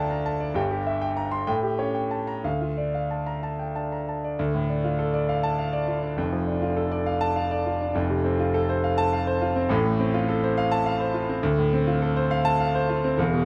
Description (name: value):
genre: classical, virtuoso piano study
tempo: 60-71 BPM (dotted quarters)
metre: 6/8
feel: rubato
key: D minor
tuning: A4 = 441 Hz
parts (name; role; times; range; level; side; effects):
- clear concert grand piano; solo; 0.0-13.4 s; E1 to C6; -25 LUFS; equal; none
room: light reverb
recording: close, detailed microphones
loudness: -25 LUFS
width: mono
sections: 0.0-4.4 A section; 4.4-13.4 B section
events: none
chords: 0.0 Dm; 0.6 Edim/G; 1.5 A7; 2.4 Dm; 6.2 Dm/F; 8.0 F; 9.7 F/A; 11.4 Dm7